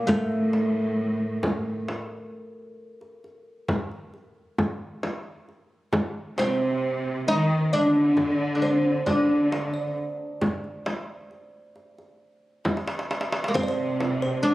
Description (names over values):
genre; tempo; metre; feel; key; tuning
Arabic maqam ensemble; 134 BPM (eighths); 10/8; straight; D maqam hijaz; A4 = 440 Hz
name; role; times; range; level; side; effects
oud; melody; 0.0-14.5 s; A3 to Eb4+25c; -24 LUFS; equal; none
dark symphonic cello section; second line; 0.0-14.5 s; A2 to Eb3+25c; -28 LUFS; equal; none
kalimba; second line; 0.0-14.5 s; A4 to Eb5+25c; -32 LUFS; equal; none
darbuka; percussion; 0.1-14.5 s; none; -32 LUFS; equal; none
frame drum; percussion; 0.1-14.2 s; none; -28 LUFS; equal; none
room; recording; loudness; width
light reverb; recorded on a phone in the room, studio ambience; -23 LUFS; side -16 dB against mid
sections
0.0-14.5 A section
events
drum fill 12.7-13.6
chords
none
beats
| 0.08 0.53 0.98 1.43 1.88 2.33 2.78 3.23 3.68 4.13 | 4.58 5.03 5.48 5.93 6.38 6.83 7.27 7.72 8.17 8.62 | 9.07 9.52 9.97 10.42 10.86 11.31 11.76 12.21 12.66 13.11 | 13.55 14.00 14.45